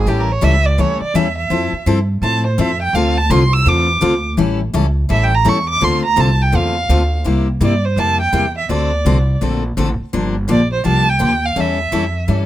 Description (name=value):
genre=acoustic string swing (jazz manouche)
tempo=167 BPM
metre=4/4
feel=swing 62% on 8ths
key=D minor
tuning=A4 = 442 Hz
part: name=warm violin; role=melody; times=0.0-12.3 s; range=G4 to E6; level=-18 LUFS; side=right 3 dB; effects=none
part: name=upright bass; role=bass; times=0.0-12.5 s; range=G1 to A2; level=-17 LUFS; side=equal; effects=none
part: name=picked steel-string acoustic guitar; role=accompaniment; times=0.1-12.5 s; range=C3 to A4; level=-18 LUFS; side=left 3 dB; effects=none
room=little or no reverb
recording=close, detailed microphones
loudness=-13 LUFS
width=side -13 dB against mid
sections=0.0-7.3 A section; 7.3-12.5 B section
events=violin solo 0.0-7.3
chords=0.1 A7; 1.5 Fmaj7; 2.9 Dm7; 4.4 A7; 5.8 Dm7; 7.3 C7; 8.7 D7; 10.1 Gm7; 11.6 A7